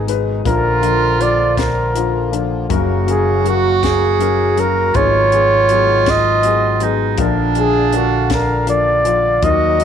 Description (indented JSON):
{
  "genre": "acoustic folk-pop ballad",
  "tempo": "54 BPM (dotted quarters)",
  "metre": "6/8",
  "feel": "straight",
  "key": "unclear",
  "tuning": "A4 = 442 Hz",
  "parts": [
    { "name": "mellow flugelhorn", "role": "melody", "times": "0.0-9.8 s", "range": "Gb4 to Eb5", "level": "-16 LUFS", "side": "equal", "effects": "none" },
    { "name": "bright clarinet", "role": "second line", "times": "0.0-9.8 s", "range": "D4 to Gb4", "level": "-19 LUFS", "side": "right 11 dB", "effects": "none" },
    { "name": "felt-muted upright piano", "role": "accompaniment", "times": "0.0-9.8 s", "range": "Gb1 to Db5", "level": "-21 LUFS", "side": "left 12 dB", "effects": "none" },
    { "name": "pedal harmonium", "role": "sustained chords", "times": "0.0-9.8 s", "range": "Bb2 to F5", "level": "-27 LUFS", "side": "equal", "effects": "none" },
    { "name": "fretless electric bass", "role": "bass", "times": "0.0-9.8 s", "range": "Gb1 to Eb2", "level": "-20 LUFS", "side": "equal", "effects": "none" },
    { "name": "compact cocktail drum kit", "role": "drums", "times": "0.1-9.8 s", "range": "hi-hat, kick drum, snare drum", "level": "-23 LUFS", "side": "left 2 dB", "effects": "none" }
  ],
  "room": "light reverb, studio reverb",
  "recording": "1960s-style stereo with parts hard left and right",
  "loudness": "-12 LUFS",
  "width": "side -8 dB against mid",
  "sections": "0.0-9.8 A section",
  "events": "none",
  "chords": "0.4 Bb; 2.7 Gb; 4.9 Abm7; 7.2 Bb",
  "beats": "| 0.45 1.57 | 2.70 3.82 | 4.95 6.07 | 7.19 8.30 | 9.43"
}